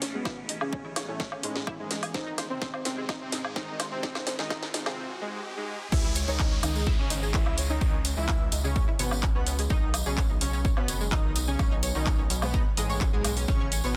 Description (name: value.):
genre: melodic techno.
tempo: 127 BPM.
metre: 4/4.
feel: straight.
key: C# minor.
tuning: A4 = 440 Hz.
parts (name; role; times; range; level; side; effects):
evolving wavetable pad; sustained chords; 0.0-5.0 s; D#3 to C#4; -44 LUFS; equal; phaser, built-in reverb, sidechain pumping.
analog pluck; arpeggios; 0.0-13.9 s; G#3 to D#5; -39 LUFS; equal; ensemble chorus, sidechain pumping, delay.
gritty driven synth bass; bass; 0.0-14.0 s; F#1 to A2; -35 LUFS; equal; sidechain pumping.
techno drum kit; drums; 0.0-13.8 s; crash cymbal, handclaps, hi-hat, snare drum, woodblock; -35 LUFS; equal; high-pass filter on hats, soft clipping on snare, high-pass filter on snare, high-pass filter on perc, high-pass filter on cymbals, high-pass filter on room.
riser and downlifter; sound effects; 2.8-9.7 s; none; -42 LUFS; equal; none.
soft supersaw; melody; 0.1-14.0 s; G#2 to E4; -38 LUFS; equal; sidechain pumping, tape echo.
electronic kick drum; drums; 0.3-13.6 s; none; -30 LUFS; equal; none.
airy dreamy lead; second line; 5.9-14.0 s; G#4 to E5; -43 LUFS; equal; chorus, sidechain pumping, delay.
tambourine; percussion; 5.9-13.9 s; none; -40 LUFS; equal; none.
room: little or no reverb.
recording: dense, heavily limited modern master, high-pass filter.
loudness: -28 LUFS.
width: mono.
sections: 0.0-5.9 A section; 5.9-14.0 B section.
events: build-up 0.0-5.9; drum fill 0.0-5.0; filter sweep on supersaw synth 0.0-5.9; break 5.0-5.9; drop 5.9-14.0.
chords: 0.0 A; 2.1 G#; 5.9 C#m7; 9.7 B.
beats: | 0.25 0.73 1.20 1.67 | 2.14 2.62 3.09 3.56 | 4.03 4.51 4.98 5.45 | 5.92 6.40 6.87 7.34 | 7.81 8.29 8.76 9.23 | 9.70 10.18 10.65 11.12 | 11.59 12.06 12.54 13.01 | 13.48 13.96.